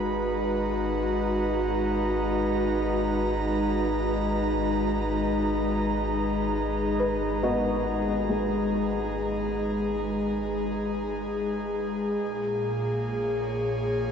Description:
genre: ambient.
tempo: free time.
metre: none.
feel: none.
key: G# minor.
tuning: A4 = 436 Hz.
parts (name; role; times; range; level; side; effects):
airy breathy pad; sustained chords; 0.0-14.1 s; A#2 to A#5; -25 LUFS; equal; chorus.
felt-muted upright piano; arpeggios; 0.0-14.1 s; G#3 to D#5; -31 LUFS; left 1 dB; ping-pong delay.
warm sub bass; bass; 0.0-14.1 s; G#1 to A#1; -35 LUFS; equal; none.
room: wet huge ambient reverb, RT60 7.8 s.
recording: nothing above 7.8 kHz.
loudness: -24 LUFS.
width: side -7 dB against mid.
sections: 0.0-14.1 A section.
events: fade-out on sub bass 0.0-14.1.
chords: 0.0 G#m7; 12.2 A#m7.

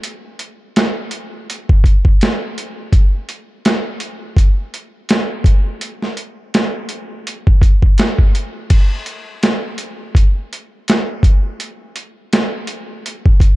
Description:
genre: hip hop.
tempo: 83 BPM.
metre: 4/4.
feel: swing 59% on 16ths.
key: none.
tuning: none.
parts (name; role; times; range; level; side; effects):
boom bap sampler-style drum kit; drums; 0.0-13.6 s; crash cymbal, hi-hat, kick drum, snare drum; -13 LUFS; equal; none.
room: little or no reverb.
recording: dark, warm production.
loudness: -13 LUFS.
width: side -18 dB against mid.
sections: 0.0-8.7 A section; 8.7-13.6 A section.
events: none.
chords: none.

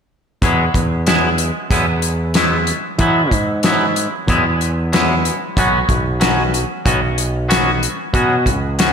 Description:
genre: quiet-loud alternative rock.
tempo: 93 BPM.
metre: 4/4.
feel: straight.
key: E major.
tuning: A4 = 441 Hz.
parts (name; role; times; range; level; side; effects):
twangy electric guitar; arpeggios; 0.4-8.9 s; F#3 to F#4; -18 LUFS; equal; wide subtle chorus, slapback echo.
overdriven picked electric bass; bass; 0.4-8.9 s; B1 to E3; -19 LUFS; equal; none.
loose indie drum kit; drums; 0.4-8.9 s; hi-hat, kick drum, snare drum; -19 LUFS; equal; none.
room: moderate lush hall reverb, RT60 2.3 s.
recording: big arena sound.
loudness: -14 LUFS.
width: side -7 dB against mid.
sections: 0.4-8.9 A section.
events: none.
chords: 0.4 Eadd9; 5.6 Bsus2.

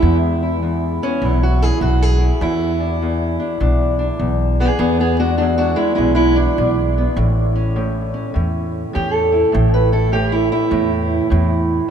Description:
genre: acoustic country blues, solo or duo.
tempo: 101 BPM.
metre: 4/4.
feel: swing 64% on 8ths.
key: unclear.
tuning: A4 = 441 Hz.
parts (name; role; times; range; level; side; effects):
fingerpicked steel-string acoustic guitar; melody; 0.0-11.9 s; E2 to B4; -17 LUFS; right 1 dB; none.
upright bass; bass; 0.0-11.8 s; A1 to E2; -18 LUFS; equal; none.
room: wet cathedral reverb, RT60 6.0 s.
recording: in a vast, echoing space.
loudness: -15 LUFS.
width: side -8 dB against mid.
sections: 0.0-11.9 A section.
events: steel-string acoustic guitar solo 0.0-11.9.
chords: 0.0 E7; 7.2 A.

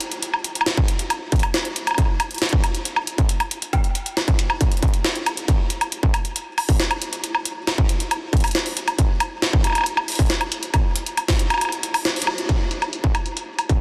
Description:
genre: IDM.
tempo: 137 BPM.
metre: 4/4.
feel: straight.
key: none.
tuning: none.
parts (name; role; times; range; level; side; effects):
jungle sampler-style drum kit; drums; 0.0-13.8 s; hi-hat, snare drum, woodblock; -24 LUFS; equal; low-pass filter on hats, low-pass filter on perc, low-pass filter on snare, tape echo.
electronic kick drum; drums; 0.8-13.8 s; none; -22 LUFS; equal; distortion.
room: moderate huge ambient reverb, RT60 4.6 s.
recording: dense, heavily limited modern master.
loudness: -21 LUFS.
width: mono.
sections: 0.0-12.5 A section; 12.5-13.8 B section.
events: kick drops out 11.6-12.5; band accent 12.1.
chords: none.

